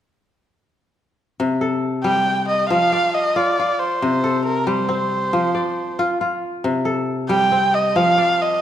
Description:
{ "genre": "west african traditional", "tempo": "91 BPM (dotted quarters)", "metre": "12/8", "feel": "straight", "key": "C dorian", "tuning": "A4 = 439 Hz", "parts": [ { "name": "kora", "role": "arpeggios", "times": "1.4-8.6 s", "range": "C3 to D5", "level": "-20 LUFS", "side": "left 1 dB", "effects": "none" }, { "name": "warm erhu", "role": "melody", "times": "2.0-8.6 s", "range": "Bb4 to G5", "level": "-18 LUFS", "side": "right 1 dB", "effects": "none" } ], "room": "wet recital hall reverb, RT60 1.6 s", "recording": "minimal, uncompressed stereo recording", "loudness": "-17 LUFS", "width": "side -10 dB against mid", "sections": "1.4-8.6 A section", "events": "none", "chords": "1.4 C5; 2.7 Dm/F; 4.0 C5; 5.3 F5; 6.6 C5; 8.0 F5" }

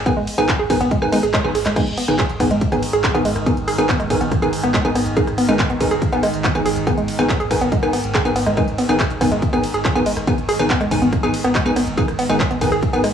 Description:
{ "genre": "driving peak-time techno", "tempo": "141 BPM", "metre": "4/4", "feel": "straight", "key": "G# minor", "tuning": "A4 = 440 Hz", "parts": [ { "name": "warm sub bass", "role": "bass", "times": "0.0-13.0 s", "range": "G#1", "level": "-30 LUFS", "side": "right 1 dB", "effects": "tube saturation, sidechain pumping, low-pass filter" }, { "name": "woody wave-folded pluck", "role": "riff", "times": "0.1-13.1 s", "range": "G#3 to G#4", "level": "-21 LUFS", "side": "right 1 dB", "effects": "chorus, tube saturation, sidechain pumping, cassette tape, tape echo" }, { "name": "wavetable chord stab", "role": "stabs", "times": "0.1-13.0 s", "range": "D#3 to G#4", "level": "-21 LUFS", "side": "equal", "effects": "sidechain pumping, cassette tape, analog delay" }, { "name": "electronic kick drum", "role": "drums", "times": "0.1-12.9 s", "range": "none", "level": "-22 LUFS", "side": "equal", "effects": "cassette tape" }, { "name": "techno drum kit", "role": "drums", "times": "0.1-13.1 s", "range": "crash cymbal, handclaps, hi-hat, ride cymbal, rim click", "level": "-25 LUFS", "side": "equal", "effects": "sidechain pumping on hats, cassette tape, sidechain pumping on cymbals" }, { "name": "overtone-sweeping drone", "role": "drone", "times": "2.1-13.1 s", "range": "G#2 to D#3", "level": "-26 LUFS", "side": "right 1 dB", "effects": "chorus, built-in reverb, sidechain pumping, cassette tape" } ], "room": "moderate spring reverb, RT60 1.3 s, digital ambience", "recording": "home recording on cassette, studio ambience", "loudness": "-16 LUFS", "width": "side -8 dB against mid", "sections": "0.0-1.8 A section; 1.8-13.1 A section", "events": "drop 0.0-1.8, 1.8-13.1; band accent 1.3", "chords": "0.0 G#m" }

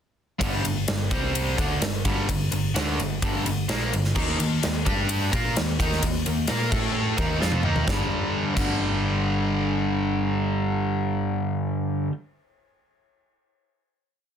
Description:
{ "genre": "hard rock", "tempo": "129 BPM", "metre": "4/4", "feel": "straight", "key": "G minor", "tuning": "A4 = 440 Hz", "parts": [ { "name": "cranked stack guitar", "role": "riff", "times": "0.4-12.1 s", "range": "G2 to Bb4", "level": "-25 LUFS", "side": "equal", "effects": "overdrive" }, { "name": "hollow-body short-scale picked electric bass", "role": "bass", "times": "0.4-12.1 s", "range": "G1 to Bb2", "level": "-29 LUFS", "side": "equal", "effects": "none" }, { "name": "big rock drum kit", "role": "drums", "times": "0.4-8.7 s", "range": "crash cymbal, kick drum, ride cymbal, snare drum, toms", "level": "-27 LUFS", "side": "equal", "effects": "none" } ], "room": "little or no reverb", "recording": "dense, heavily limited modern master", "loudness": "-22 LUFS", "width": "side -8 dB against mid", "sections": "0.4-7.9 riff; 7.9-11.6 final chord", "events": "drum fill 7.4-7.9", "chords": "0.4 G5; 1.1 C5; 1.6 Gm; 4.2 Eb5; 4.9 G5; 5.3 Eb5; 6.7 A5; 7.2 Eb5; 7.9 G5" }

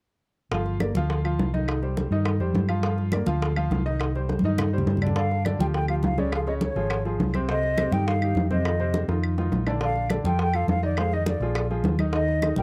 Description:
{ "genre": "latin, salsa", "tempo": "207 BPM", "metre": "4/4", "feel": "straight", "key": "G minor", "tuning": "A4 = 440 Hz", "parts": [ { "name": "clear grand piano", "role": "accompaniment", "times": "0.5-12.6 s", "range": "C3 to F5", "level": "-32 LUFS", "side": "equal", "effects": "none" }, { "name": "hollow-body short-scale fingered electric bass", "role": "bass", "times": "0.5-12.6 s", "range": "G1 to G2", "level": "-28 LUFS", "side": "equal", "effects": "none" }, { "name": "bongos", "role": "percussion", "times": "0.5-12.6 s", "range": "none", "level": "-35 LUFS", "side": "equal", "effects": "none" }, { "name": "congas", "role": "percussion", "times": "0.5-12.6 s", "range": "none", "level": "-32 LUFS", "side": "equal", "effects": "none" }, { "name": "claves", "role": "percussion", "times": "0.8-12.6 s", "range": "none", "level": "-39 LUFS", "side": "equal", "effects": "none" }, { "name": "mellow hollow silver concert flute", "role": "melody", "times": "5.2-12.6 s", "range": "C#5 to G5", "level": "-31 LUFS", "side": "equal", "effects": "none" } ], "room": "little or no reverb", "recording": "dry, close 1970s-style studio recording", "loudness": "-25 LUFS", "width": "mono", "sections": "0.5-5.2 A section; 5.2-12.6 B section", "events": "drum fill 4.3-5.2, 9.1-9.8", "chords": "0.5 Gm7; 1.7 Cm; 2.8 Gm7; 4.0 Cm; 5.2 G5; 6.3 C#; 7.5 Cm; 8.6 F5; 9.8 Bbmaj7; 11.0 Fm7; 11.6 Bb5" }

